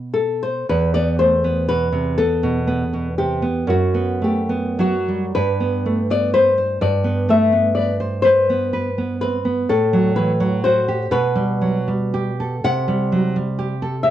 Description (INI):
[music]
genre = romantic duo for nylon-string guitar and classical guitar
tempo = 33-44 BPM (dotted quarters)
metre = 6/8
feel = rubato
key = E minor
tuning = A4 = 442 Hz
[part]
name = flamenco guitar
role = melody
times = 0.0-14.1 s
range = F#4 to F#5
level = -19 LUFS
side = left 2 dB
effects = none
[part]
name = nylon-string guitar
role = accompaniment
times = 0.0-14.1 s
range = E2 to C5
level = -19 LUFS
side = right 2 dB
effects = none
[sound]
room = moderate studio reverb, RT60 0.5 s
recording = worn, warbling old tape, cassette tape, warbly pitch drift, nothing above 10.4 kHz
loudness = -16 LUFS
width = side -12 dB against mid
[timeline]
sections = 0.7-14.1 A section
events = none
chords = 0.0 B5; 0.7 E5; 3.7 B5/F#; 5.4 Gadd11; 9.7 Am13; 11.1 G/B; 12.7 C5